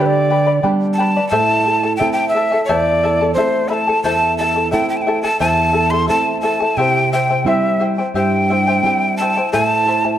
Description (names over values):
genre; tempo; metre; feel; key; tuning
andean folk, Andean ensemble; 88 BPM; 4/4; straight; A minor; A4 = 439 Hz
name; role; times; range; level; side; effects
breathy quena; melody; 0.0-10.2 s; B4 to C6; -16 LUFS; equal; slapback echo
charango; accompaniment; 0.0-10.2 s; E4 to B5; -19 LUFS; left 3 dB; none
flamenco guitar; accompaniment; 0.0-10.2 s; E2 to E4; -20 LUFS; right 4 dB; none
room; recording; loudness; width
moderate scoring stage reverb, RT60 1.7 s; dark, warm production; -14 LUFS; side -11 dB against mid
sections
0.0-10.2 A section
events
none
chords
0.0 G; 1.3 Am; 6.8 C; 9.5 Am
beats
0.65 | 1.33 2.01 2.69 3.38 | 4.06 4.74 5.42 6.11 | 6.79 7.48 8.16 8.84 | 9.53